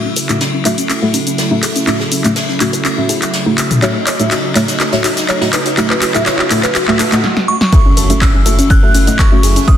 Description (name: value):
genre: progressive house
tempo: 123 BPM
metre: 4/4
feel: straight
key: F# dorian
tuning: A4 = 441 Hz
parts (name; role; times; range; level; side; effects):
- lush unison pad; sustained chords; 0.0-9.8 s; C#3 to E4; -21 LUFS; equal; chorus, sidechain pumping
- soft round pluck; arpeggios; 0.0-9.8 s; C#4 to C#5; -20 LUFS; equal; wide subtle chorus, sidechain pumping, digital delay
- deep mellow chord stab; stabs; 0.0-9.8 s; A3 to E5; -18 LUFS; equal; chorus, phaser, sidechain pumping, digital delay
- riser and impact; sound effects; 2.8-9.7 s; none; -23 LUFS; equal; none
- house drum kit; drums; 0.2-9.8 s; handclaps, hi-hat, shaker, snare drum; -16 LUFS; left 1 dB; soft clipping on snare, studio reverb
- soft brush drum kit; drums; 0.2-9.8 s; hi-hat, ride cymbal, snare drum; -24 LUFS; left 2 dB; sidechain pumping on cymbals, high-pass filter on cymbals, studio reverb, sidechain pumping on hats, high-pass filter on hats, soft clipping on snare, high-pass filter on snare, high-pass filter on room
- electronic congas and toms; percussion; 0.3-7.1 s; none; -22 LUFS; left 1 dB; sidechain pumping on perc, studio reverb, sidechain pumping on toms
- glassy synth bell; melody; 7.5-9.8 s; C#6 to F#6; -19 LUFS; right 2 dB; chorus, digital delay
- electronic kick drum; drums; 7.7-9.8 s; none; -10 LUFS; equal; studio reverb
- dark detuned saw bass; bass; 8.0-9.6 s; F#1; -16 LUFS; equal; sidechain pumping
room: light reverb, digital ambience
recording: dense, heavily limited modern master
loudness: -10 LUFS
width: side -10 dB against mid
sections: 0.0-7.7 A section; 7.7-9.8 B section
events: build-up 0.0-7.7; drum fill 0.0-7.2, 7.2-7.7; filter sweep on synth pluck 0.0-7.7; filter sweep on analog synth pad 0.0-7.7; drop 7.7-9.8; impact 7.7-9.7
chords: 0.0 F#m7